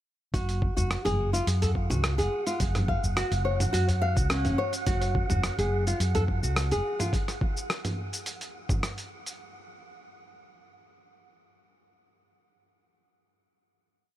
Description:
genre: organic downtempo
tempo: 106 BPM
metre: 4/4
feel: straight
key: unclear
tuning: A4 = 436 Hz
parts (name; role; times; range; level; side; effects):
- flamenco guitar; arpeggios; 0.3-7.1 s; C#4 to E#5; -31 LUFS; left 1 dB; digital delay
- woody fretless electric bass; bass; 0.3-6.8 s; F#1 to F#2; -27 LUFS; equal; tube saturation
- dusty soul sampler-style drum kit; drums; 0.3-9.4 s; hi-hat, rim click, shaker, toms; -32 LUFS; right 1 dB; overdrive
- electronic kick drum; drums; 0.3-8.8 s; none; -29 LUFS; equal; overdrive
- wind-like tuned noise texture; texture; 1.4-9.4 s; F#5; -38 LUFS; right 6 dB; built-in reverb
- udu; percussion; 0.8-6.3 s; none; -32 LUFS; left 1 dB; none
room: little or no reverb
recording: none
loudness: -25 LUFS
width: side -13 dB against mid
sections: 0.3-9.4 groove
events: none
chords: 0.3 F#5

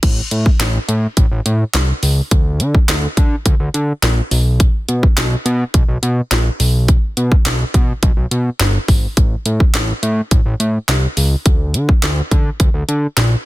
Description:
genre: dance-pop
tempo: 105 BPM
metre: 4/4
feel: straight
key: unclear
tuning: A4 = 439 Hz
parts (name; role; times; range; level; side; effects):
- fat analog bass; bass; 0.0-13.4 s; G1 to D3; -16 LUFS; equal; sidechain pumping
- house drum kit; drums; 0.0-13.3 s; crash cymbal, handclaps, hi-hat, kick drum, snare drum; -14 LUFS; equal; soft clipping on snare
room: little or no reverb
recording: dense, heavily limited modern master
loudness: -13 LUFS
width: side -18 dB against mid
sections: 0.0-13.5 A section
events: none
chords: none

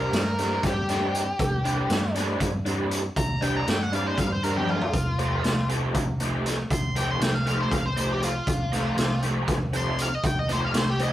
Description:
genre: psychedelic rock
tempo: 237 BPM (eighths)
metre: 7/8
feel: straight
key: unclear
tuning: A4 = 436 Hz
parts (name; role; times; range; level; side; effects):
- octave-fuzz lead guitar; melody; 0.0-11.1 s; F4 to C6; -29 LUFS; left 1 dB; distortion
- raw garage guitar; riff; 0.0-11.1 s; C3 to D4; -28 LUFS; equal; overdrive, rotary speaker
- hollow-body short-scale picked electric bass; bass; 0.0-11.1 s; C2 to G2; -29 LUFS; equal; none
- raw garage drum kit; drums; 0.1-11.1 s; hi-hat, kick drum, snare drum, toms; -28 LUFS; equal; none
room: moderate studio ambience, RT60 0.5 s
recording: rough rehearsal-room recording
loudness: -23 LUFS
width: side -13 dB against mid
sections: 0.0-11.1 A section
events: lead electric guitar solo 0.0-11.1; drum fill 4.6-4.9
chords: 0.0 Csus2; 4.9 F/C

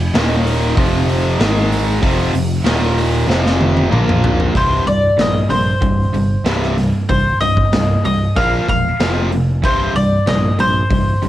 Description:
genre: hard rock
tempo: 95 BPM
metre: 4/4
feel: straight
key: C minor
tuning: A4 = 440 Hz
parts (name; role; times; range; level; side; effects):
- distorted electric guitar; riff; 0.0-11.3 s; C2 to Bb3; -21 LUFS; left 5 dB; overdrive
- high-gain distorted guitar; riff; 0.0-4.5 s; Eb2 to Bb3; -26 LUFS; right 1 dB; distortion
- overdriven electric guitar; riff; 0.0-11.3 s; C2 to Bb3; -20 LUFS; right 4 dB; none
- modern bright picked electric bass; bass; 0.0-11.3 s; C1 to Bb1; -19 LUFS; equal; none
- big rock drum kit; drums; 0.1-11.3 s; hi-hat, kick drum, snare drum, toms; -19 LUFS; equal; cassette tape
- bowl-back mandolin; melody; 4.6-11.3 s; C5 to F5; -18 LUFS; left 1 dB; cassette tape, analog delay
room: light reverb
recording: home recording on cassette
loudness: -13 LUFS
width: side -13 dB against mid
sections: 0.0-4.6 A section; 4.6-11.3 B section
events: drum fill 3.3-4.6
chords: 0.1 Eb5; 0.8 F5; 1.4 Ab5; 2.0 F5; 2.7 Eb5; 3.3 F5; 3.9 Bb5; 4.6 Cm; 8.4 Bb5; 9.0 F5; 9.6 C5

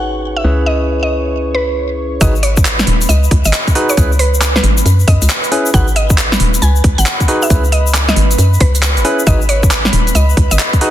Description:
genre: UK garage, two-step garage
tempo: 136 BPM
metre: 4/4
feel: swing 65% on 16ths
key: G# minor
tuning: A4 = 442 Hz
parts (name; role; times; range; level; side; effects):
- mallet-like synth pluck; melody; 0.0-10.7 s; B4 to G#5; -20 LUFS; equal; chorus, cassette tape, digital delay
- warm analog pad; sustained chords; 0.0-10.9 s; B4 to C#6; -25 LUFS; right 2 dB; chorus, sidechain pumping
- barky tine electric piano; stabs; 0.0-10.9 s; C#4 to B4; -18 LUFS; equal; ping-pong delay
- hollow knocking FM bass; bass; 0.0-10.6 s; D#1 to F#2; -13 LUFS; equal; none
- electronic kick drum; drums; 2.2-10.8 s; none; -14 LUFS; equal; none
- garage drum kit; drums; 2.2-10.9 s; handclaps, hi-hat, snare drum; -16 LUFS; right 1 dB; low-pass filter on hats, low-pass filter on snare, low-pass filter on room
- egg shaker; percussion; 2.2-10.8 s; none; -22 LUFS; left 8 dB; none
room: little or no reverb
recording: dense, heavily limited modern master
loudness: -10 LUFS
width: side -12 dB against mid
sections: 0.0-2.2 A section; 2.2-10.9 B section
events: drop 2.2-10.9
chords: 0.4 C#m7; 2.2 G#m7; 4.0 C#m7; 5.7 G#m7; 7.5 C#m7; 9.3 G#m7

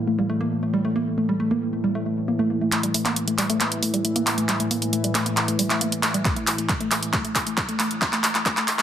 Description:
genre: driving peak-time techno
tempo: 136 BPM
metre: 4/4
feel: straight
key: unclear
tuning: A4 = 443 Hz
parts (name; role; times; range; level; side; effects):
- analog drone; drone; 0.0-8.8 s; A2 to E3; -28 LUFS; left 1 dB; chorus, sidechain pumping
- woody wave-folded pluck; riff; 0.1-8.8 s; G3 to Bb3; -25 LUFS; equal; chorus, tube saturation, sidechain pumping, tape echo
- techno drum kit; drums; 2.7-8.8 s; handclaps, hi-hat; -22 LUFS; equal; overdrive
- electronic kick drum; drums; 6.3-8.5 s; none; -27 LUFS; equal; none
room: moderate plate reverb, RT60 1.2 s, digital ambience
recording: dense, heavily limited modern master, high-pass filter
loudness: -20 LUFS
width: side -10 dB against mid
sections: 0.0-2.7 A section; 2.7-8.8 B section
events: filter sweep on synth arpeggio sound 0.0-2.7, 2.7-8.8; build-up 2.7-8.8; drum fill 2.7-8.8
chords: 0.0 A5

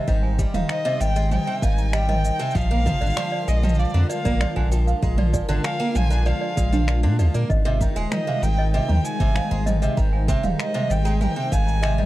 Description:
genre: folktronica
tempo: 97 BPM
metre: 4/4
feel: straight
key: unclear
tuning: A4 = 443 Hz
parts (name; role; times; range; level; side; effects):
- toy piano; second line; 0.0-12.1 s; D4 to Bb5; -30 LUFS; right 3 dB; tape echo
- warm analog pad; sustained chords; 0.0-12.1 s; D3 to C5; -31 LUFS; left 1 dB; chorus
- picked twelve-string acoustic guitar; arpeggios; 0.0-12.1 s; C3 to Bb3; -29 LUFS; right 2 dB; none
- warm sub bass; bass; 0.1-12.1 s; Eb1 to Bb2; -21 LUFS; equal; none
- electronic kick drum; drums; 0.1-11.6 s; none; -24 LUFS; equal; none
- organic electronic drum kit; drums; 0.1-12.1 s; finger snaps, shaker, toms; -28 LUFS; right 1 dB; none
- rich violin; melody; 0.7-12.1 s; D5 to Ab5; -29 LUFS; left 1 dB; tape echo
room: little or no reverb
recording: dry, close 1970s-style studio recording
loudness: -19 LUFS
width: side -16 dB against mid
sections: 0.0-12.1 A section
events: none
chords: 0.0 Abmaj7; 2.6 Bb7; 7.5 Abmaj7

